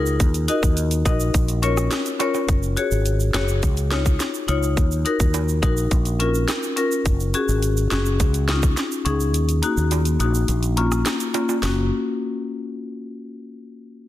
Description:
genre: dancehall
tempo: 105 BPM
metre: 4/4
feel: straight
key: F# major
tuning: A4 = 440 Hz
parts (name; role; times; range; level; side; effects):
- marimba with medium hard mallets; accompaniment; 0.0-11.9 s; A#3 to D#5; -24 LUFS; left 3 dB; low-pass filter
- mellow fretless electric bass; bass; 0.0-11.9 s; F#1 to D#2; -21 LUFS; equal; none
- egg shaker and timbales; percussion; 0.1-11.9 s; none; -32 LUFS; right 9 dB; none
- island pop drum kit; drums; 0.2-11.8 s; hi-hat, kick drum, rim click, snare drum; -22 LUFS; equal; none
room: light reverb, small room ambience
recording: dense, heavily limited modern master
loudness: -18 LUFS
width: side -14 dB against mid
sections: 0.0-2.5 A section; 2.5-11.6 B section; 11.6-13.9 C section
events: filter sweep on marimba 2.5-11.6; kick muted 9.3-11.6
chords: 0.2 D#m; 1.3 A#m; 2.5 F#sus2; 3.6 C#add9; 4.8 D#m; 5.9 A#m; 7.1 F#sus2; 8.2 C#sus2; 9.3 D#m; 10.5 A#m; 11.6 F#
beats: | 0.20 0.77 1.34 1.92 | 2.49 3.06 3.63 4.20 | 4.77 5.34 5.92 6.49 | 7.06 7.63 8.20 8.77 | 9.34 9.91 10.49 11.06 | 11.63

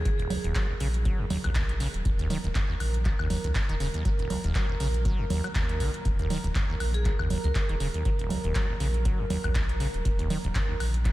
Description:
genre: acid house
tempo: 120 BPM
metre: 4/4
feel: swing 56% on 16ths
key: Eb minor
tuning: A4 = 440 Hz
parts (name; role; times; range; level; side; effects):
- vibraphone with hard mallets; melody; 0.0-0.5, 6.9-8.1 s; Ab4 to Bb4; -41 LUFS; right 2 dB; tape echo
- warm analog pad; sustained chords; 0.0-11.1 s; Bb4; -38 LUFS; right 3 dB; chorus, sidechain pumping
- acid bass, saw; riff; 0.0-11.1 s; Eb1 to Gb3; -32 LUFS; equal; cassette tape, sidechain pumping, tape echo
- booming analog drum machine; drums; 0.1-11.1 s; congas, handclaps, hi-hat, woodblock; -34 LUFS; right 2 dB; none
- electronic kick drum; drums; 0.1-11.1 s; none; -28 LUFS; equal; none
- warm sub bass; bass; 0.4-11.1 s; Eb1 to Db2; -29 LUFS; equal; sidechain pumping
room: light reverb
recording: none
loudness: -25 LUFS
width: side -16 dB against mid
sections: 0.0-11.1 A section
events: none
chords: 0.0 Ebm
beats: | 0.05 0.55 1.05 1.55 | 2.05 2.55 3.05 3.55 | 4.05 4.55 5.05 5.55 | 6.05 6.55 7.05 7.55 | 8.05 8.55 9.05 9.55 | 10.05 10.55 11.05

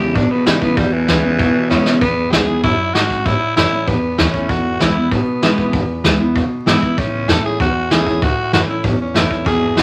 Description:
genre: rockabilly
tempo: 193 BPM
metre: 4/4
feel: straight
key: E major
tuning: A4 = 440 Hz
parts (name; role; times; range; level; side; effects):
- growling tenor saxophone; melody; 0.0-9.8 s; E3 to A4; -22 LUFS; equal; none
- picked steel-string acoustic guitar; accompaniment; 0.0-9.8 s; E2 to E4; -20 LUFS; equal; none
- electric guitar through a small old amp; riff; 0.0-2.0, 9.5-9.8 s; E2 to C#3; -24 LUFS; equal; none
- upright bass; bass; 0.0-9.8 s; E1 to E2; -25 LUFS; equal; none
- vintage brush drum kit; drums; 0.2-9.8 s; hi-hat, kick drum, snare drum; -21 LUFS; equal; none
room: light reverb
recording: vinyl crackle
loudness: -16 LUFS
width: mono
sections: 0.0-2.0 A section; 2.0-9.8 B section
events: tenor saxophone solo 0.0-2.0; drum fill 1.7-2.0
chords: 0.0 E; 3.3 A; 4.5 E; 7.0 A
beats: 0.16 0.47 | 0.78 1.09 1.40 1.71 | 2.02 2.33 2.63 2.94 | 3.25 3.56 3.88 4.19 | 4.50 4.81 5.12 5.43 | 5.74 6.05 6.36 6.67 | 6.98 7.29 7.60 7.91 | 8.22 8.53 8.84 9.15 | 9.46 9.77

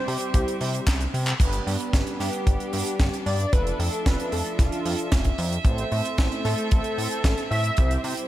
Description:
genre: italo disco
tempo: 113 BPM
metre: 4/4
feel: straight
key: unclear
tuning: A4 = 436 Hz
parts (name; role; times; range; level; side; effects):
- wide unison lead; melody; 0.0-8.0 s; F4 to E5; -30 LUFS; equal; tape echo
- warm studio string section; sustained chords; 0.0-8.3 s; F3 to E5; -33 LUFS; equal; none
- mellow synth brass; stabs; 0.0-8.3 s; B3 to E5; -33 LUFS; right 3 dB; chorus
- chorused synth bass; bass; 0.1-8.1 s; F1 to C3; -27 LUFS; equal; none
- tight funk drum kit; drums; 0.1-8.3 s; crash cymbal, handclaps, hi-hat, snare drum; -31 LUFS; right 2 dB; studio reverb, gated reverb
- kick drum; drums; 0.3-7.9 s; none; -21 LUFS; equal; studio reverb
room: studio ambience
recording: none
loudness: -22 LUFS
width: side -14 dB against mid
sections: 0.0-1.4 A section; 1.4-8.3 A section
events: drum fill 0.9-1.4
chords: 0.0 C; 1.4 G; 3.5 Dmadd9/F; 5.7 Am; 7.8 C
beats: 0.34 0.87 | 1.40 1.93 2.46 3.00 | 3.53 4.06 4.59 5.12 | 5.65 6.18 6.71 7.24 | 7.78

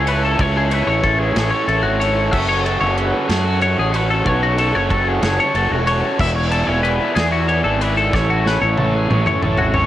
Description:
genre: math rock and midwest emo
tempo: 62 BPM (dotted quarters)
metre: 6/8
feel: straight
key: A major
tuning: A4 = 440 Hz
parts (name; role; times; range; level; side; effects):
- twelve-string electric guitar; arpeggios; 0.0-9.9 s; F#4 to E5; -20 LUFS; left 4 dB; cassette tape, analog delay
- raw garage guitar; riff; 0.0-9.9 s; B3 to D5; -20 LUFS; right 2 dB; overdrive, cassette tape
- fuzz fingered electric bass; bass; 0.0-9.9 s; E1 to F#2; -20 LUFS; equal; overdrive
- loose indie drum kit; drums; 0.1-9.9 s; crash cymbal, kick drum, ride cymbal, snare drum, toms; -24 LUFS; equal; none
room: small room reverb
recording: home recording on cassette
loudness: -15 LUFS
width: side -13 dB against mid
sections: 0.0-9.9 A section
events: drum fill 8.1-9.9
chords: 0.0 Amaj7; 2.3 F#madd9; 6.2 E7sus4; 8.1 Amaj7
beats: | 0.40 1.36 | 2.33 3.30 | 4.26 5.23 | 6.20 7.16 | 8.13 9.10

